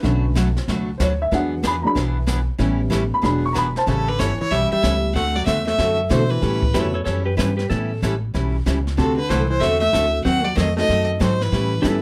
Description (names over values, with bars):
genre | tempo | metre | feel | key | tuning
country, western swing | 188 BPM | 4/4 | swing 64% on 8ths | A mixolydian | A4 = 440 Hz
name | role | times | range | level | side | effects
dark upright piano | accompaniment | 0.0-7.9, 9.9-12.0 s | D3 to C#6 | -26 LUFS | equal | none
picked steel-string acoustic guitar | accompaniment | 0.0-12.0 s | B2 to A4 | -28 LUFS | equal | none
upright bass | bass | 0.0-12.0 s | E1 to B2 | -25 LUFS | equal | none
jazz brush drum kit | drums | 0.0-12.0 s | brushed snare drum, hi-hat, kick drum, snare drum | -30 LUFS | equal | none
clear fiddle | melody | 3.9-6.9, 9.0-12.0 s | A4 to F#5 | -24 LUFS | equal | none
hollow-body jazz guitar | second line | 3.9-6.9, 9.0-12.0 s | C3 to B#3 | -28 LUFS | equal | none
clean lap steel guitar | second line | 6.7-8.0, 11.8-12.0 s | E4 to C#5 | -27 LUFS | equal | none
room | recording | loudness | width
light reverb | none | -20 LUFS | mono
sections
0.0-3.9 A section; 3.9-12.0 B section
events
upright piano solo 0.0-3.9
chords
0.0 Bm7; 1.3 E9; 2.6 A9; 3.2 E9; 3.9 A9; 5.1 D9; 6.4 A9; 9.0 D9; 10.2 D#dim7